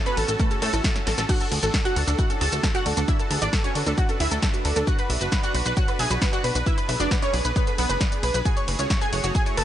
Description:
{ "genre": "uplifting trance", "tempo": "134 BPM", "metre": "4/4", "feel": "straight", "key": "unclear", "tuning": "A4 = 440 Hz", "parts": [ { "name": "wide unison pluck", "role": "melody", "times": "0.0-9.6 s", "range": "A3 to A5", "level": "-27 LUFS", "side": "right 1 dB", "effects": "ensemble chorus, sidechain pumping, digital delay" }, { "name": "plucky unison lead", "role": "second line", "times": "0.0-9.6 s", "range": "A5 to A6", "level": "-34 LUFS", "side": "left 1 dB", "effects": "cassette tape, sidechain pumping, digital delay" }, { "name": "supersaw pad", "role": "sustained chords", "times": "0.0-9.6 s", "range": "A3 to B4", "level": "-33 LUFS", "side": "right 1 dB", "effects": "sidechain pumping" }, { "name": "wide unison pluck", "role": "arpeggios", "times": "0.1-9.6 s", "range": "A3 to B5", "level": "-34 LUFS", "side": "right 4 dB", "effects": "sidechain pumping, digital delay" }, { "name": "punchy analog drum machine", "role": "drums", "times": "0.1-9.6 s", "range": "crash cymbal, hi-hat, ride cymbal, shaker, snare drum", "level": "-29 LUFS", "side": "equal", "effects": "none" }, { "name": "plucky analog bass", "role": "bass", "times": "0.2-9.6 s", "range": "F#1 to A2", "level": "-26 LUFS", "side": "equal", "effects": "sidechain pumping" }, { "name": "electronic kick drum", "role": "drums", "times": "0.4-9.4 s", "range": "none", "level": "-24 LUFS", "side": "equal", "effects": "none" } ], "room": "little or no reverb", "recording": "nothing above 10.3 kHz", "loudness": "-20 LUFS", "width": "side -11 dB against mid", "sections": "0.0-1.3 A section; 1.3-9.6 A section", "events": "drop 0.0-1.3, 1.3-9.6; drum fill 1.0-1.3", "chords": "0.0 A; 1.3 D; 4.9 Bm; 8.5 F#madd9", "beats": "0.40 0.84 | 1.29 1.74 2.19 2.63 | 3.08 3.53 3.98 4.43 | 4.87 5.32 5.77 6.22 | 6.66 7.11 7.56 8.01 | 8.46 8.90 9.35" }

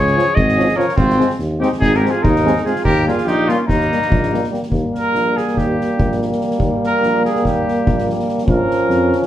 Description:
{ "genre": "balkan folk, Balkan brass band", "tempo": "288 BPM (eighths)", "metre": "9/8", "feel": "straight", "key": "Eb mixolydian", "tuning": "A4 = 440 Hz", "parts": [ { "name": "mellow trumpet", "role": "melody", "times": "0.0-4.5 s", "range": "Eb4 to Eb5", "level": "-19 LUFS", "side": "left 1 dB", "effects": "none" }, { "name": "clear trumpet", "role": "second line", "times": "0.0-9.3 s", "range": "Bb3 to Bb4", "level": "-21 LUFS", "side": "right 2 dB", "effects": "none" }, { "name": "warm tuba", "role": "bass", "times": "0.0-9.1 s", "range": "Ab1 to F2", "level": "-20 LUFS", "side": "equal", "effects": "none" }, { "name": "soft-mallet drum kit", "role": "percussion", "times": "0.1-9.3 s", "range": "kick drum, snare drum", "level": "-22 LUFS", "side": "equal", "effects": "none" }, { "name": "clear French horn", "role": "accompaniment", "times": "0.2-9.3 s", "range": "Bb3 to Db4", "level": "-20 LUFS", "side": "left 2 dB", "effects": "none" }, { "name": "clear trombone", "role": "accompaniment", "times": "0.2-9.3 s", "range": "F3 to Ab3", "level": "-23 LUFS", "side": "right 2 dB", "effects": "none" } ], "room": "wet studio reverb, RT60 0.6 s", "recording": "heard from further back in the room", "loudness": "-14 LUFS", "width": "side -12 dB against mid", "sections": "0.0-4.7 A section; 4.7-9.3 B section", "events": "trumpet solo 4.7-9.3", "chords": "0.0 Db; 1.0 Ab; 2.8 Eb; 8.5 Bbm", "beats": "0.13 0.34 0.55 0.76 | 0.96 1.17 1.38 1.59 1.80 2.00 2.21 2.42 2.63 | 2.83 3.04 3.25 3.46 3.67 3.88 4.08 4.29 4.50 | 4.71 4.92 5.13 5.33 5.54 5.75 5.96 6.17 6.38 | 6.59 6.80 7.01 7.22 7.43 7.64 7.85 8.06 8.27 | 8.47 8.68 8.89 9.10" }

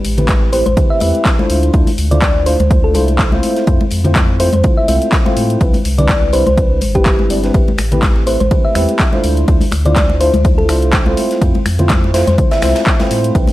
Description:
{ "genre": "deep house", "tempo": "124 BPM", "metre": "4/4", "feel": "swing 55% on 16ths", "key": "unclear", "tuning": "A4 = 440 Hz", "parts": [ { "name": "sub bass with octave", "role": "bass", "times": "0.0-13.5 s", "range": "G1 to A2", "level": "-16 LUFS", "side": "equal", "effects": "sidechain pumping" }, { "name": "gated 80s drum kit", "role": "drums", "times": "0.0-13.5 s", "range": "ride cymbal, snare drum", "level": "-31 LUFS", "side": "equal", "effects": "sidechain pumping on cymbals, high-pass filter on cymbals, high-pass filter on snare, high-pass filter on room" }, { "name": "punchy analog drum machine", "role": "drums", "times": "0.0-13.5 s", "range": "finger snaps, handclaps, hi-hat", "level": "-21 LUFS", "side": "equal", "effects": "overdrive" }, { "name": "tine electric piano", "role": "stabs", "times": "0.2-13.5 s", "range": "G3 to D5", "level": "-18 LUFS", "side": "equal", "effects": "lush chorus, sidechain pumping, analog delay" }, { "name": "congas", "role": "percussion", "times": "0.2-13.5 s", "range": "none", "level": "-21 LUFS", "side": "left 2 dB", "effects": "none" }, { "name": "electronic kick drum", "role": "drums", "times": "0.3-13.5 s", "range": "none", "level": "-14 LUFS", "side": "equal", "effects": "overdrive" }, { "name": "thumb-piano-like synth pluck", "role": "melody", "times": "0.5-12.7 s", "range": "G4 to E5", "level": "-18 LUFS", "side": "equal", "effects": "chorus, cassette tape, analog delay" } ], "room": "light reverb, studio ambience", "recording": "none", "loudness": "-10 LUFS", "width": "side -16 dB against mid", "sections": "0.0-13.5 A section", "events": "none", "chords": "0.0 Am9; 1.5 Dm9; 3.4 Fmaj7; 5.6 Cmaj9; 7.5 Am9; 9.2 Dm9; 11.2 Fmaj7", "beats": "0.29 0.77 1.25 | 1.74 2.22 2.71 3.19 | 3.67 4.16 4.64 5.12 | 5.61 6.09 6.58 7.06 | 7.54 8.03 8.51 8.99 | 9.48 9.96 10.45 10.93 | 11.41 11.90 12.38 12.87 | 13.35" }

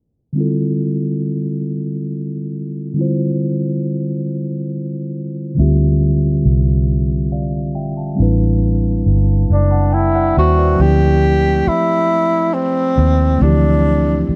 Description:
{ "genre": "slow six-eight R&B", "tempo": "46 BPM (dotted quarters)", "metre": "6/8", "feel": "straight", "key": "D minor", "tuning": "A4 = 440 Hz", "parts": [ { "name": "mellow tine electric piano", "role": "accompaniment", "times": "0.3-14.4 s", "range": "D3 to A5", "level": "-21 LUFS", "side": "equal", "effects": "none" }, { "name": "vintage muted fingered electric bass", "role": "bass", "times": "5.6-14.3 s", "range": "F#1 to Eb2", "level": "-17 LUFS", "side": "equal", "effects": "none" }, { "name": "breathy tenor saxophone", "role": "melody", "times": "9.5-14.4 s", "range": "C4 to G4", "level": "-18 LUFS", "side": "equal", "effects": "none" } ], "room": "little or no reverb", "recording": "dry, close 1970s-style studio recording, low-pass filter", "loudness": "-16 LUFS", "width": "mono", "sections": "0.4-10.8 A section; 10.8-14.4 B section", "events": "filter sweep 0.4-10.8", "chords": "0.4 Dm11; 8.2 Am11; 10.8 Dm11", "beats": "| 0.35 1.66 | 2.96 4.27 | 5.57 6.88 | 8.18 9.48 | 10.79 12.09 | 13.40" }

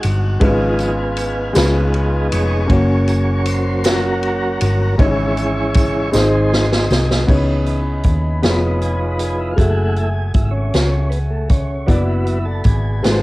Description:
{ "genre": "slow gospel", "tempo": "52 BPM (dotted quarters)", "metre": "6/8", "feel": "straight", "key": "C# minor from 7.3 s", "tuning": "A4 = 441 Hz", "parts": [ { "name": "clear concert grand piano", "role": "accompaniment", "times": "0.0-13.2 s", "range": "G#2 to E5", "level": "-22 LUFS", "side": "left 1 dB", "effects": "cassette tape" }, { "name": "tonewheel organ", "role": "sustained chords", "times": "0.0-13.2 s", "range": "D#3 to D#5", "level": "-21 LUFS", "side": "right 1 dB", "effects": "slow rotary speaker, cassette tape" }, { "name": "hollow-body short-scale fingered electric bass", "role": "bass", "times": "0.0-13.2 s", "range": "E#1 to D#2", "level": "-18 LUFS", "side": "equal", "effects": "tube saturation" }, { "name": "swinging big-band drum kit", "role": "drums", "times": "0.0-13.2 s", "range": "crash cymbal, hi-hat, kick drum, ride cymbal, snare drum", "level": "-18 LUFS", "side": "equal", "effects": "cassette tape" }, { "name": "tambourine", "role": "percussion", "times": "0.0-7.3 s", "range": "none", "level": "-33 LUFS", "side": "right 4 dB", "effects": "none" }, { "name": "warm woodwind section", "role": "sustained chords", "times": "7.3-13.2 s", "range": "B#4 to B5", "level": "-31 LUFS", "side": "equal", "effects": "cassette tape" } ], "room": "light reverb, small room ambience", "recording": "home recording on cassette", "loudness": "-14 LUFS", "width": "side -19 dB against mid", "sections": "0.0-7.3 A section; 7.3-13.2 B section", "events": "tonewheel organ solo 0.0-7.3, 7.3-13.2; drum fill 6.1-7.3", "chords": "0.4 C#7/G#; 1.6 C#7; 2.7 F#; 5.0 C#m/G#; 6.1 G#; 7.3 C#m9; 8.4 C#7/E#; 9.6 F#m9; 11.9 D69/F#", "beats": "| 0.41 1.56 | 2.70 3.85 | 4.99 6.14 | 7.29 8.44 | 9.59 10.74 | 11.89 13.04" }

